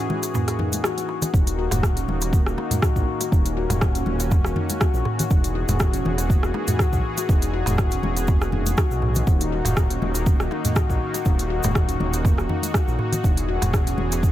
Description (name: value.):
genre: afro house.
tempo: 121 BPM.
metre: 4/4.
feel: swing 54% on 16ths.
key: Eb phrygian.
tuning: A4 = 439 Hz.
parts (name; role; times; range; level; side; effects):
warm analog pad; sustained chords; 0.0-14.3 s; Eb3 to G#4; -30 LUFS; left 1 dB; chorus, tremolo, sidechain pumping.
handpan; arpeggios; 0.0-14.3 s; Bb3 to Gb4; -28 LUFS; left 4 dB; sidechain pumping, dub echo.
congas; percussion; 0.1-14.3 s; none; -30 LUFS; left 2 dB; none.
afro-pop drum kit; drums; 0.2-14.2 s; hi-hat, rim click, toms; -27 LUFS; equal; none.
cabasa; percussion; 0.2-14.3 s; none; -36 LUFS; right 1 dB; none.
darbuka; percussion; 0.2-14.2 s; none; -30 LUFS; right 2 dB; none.
dark detuned saw bass; bass; 1.3-14.3 s; Eb1 to B1; -26 LUFS; equal; sidechain pumping.
electronic kick drum; drums; 1.3-14.3 s; none; -20 LUFS; equal; none.
room: small room ambience.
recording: none.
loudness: -19 LUFS.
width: side -13 dB against mid.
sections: 0.0-1.3 A section; 1.3-14.3 B section.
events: break 0.0-1.3; drop 1.3-14.3.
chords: 0.0 E; 1.3 Ebm7; 5.3 Emaj7; 9.3 Ebm; 13.2 Emaj7.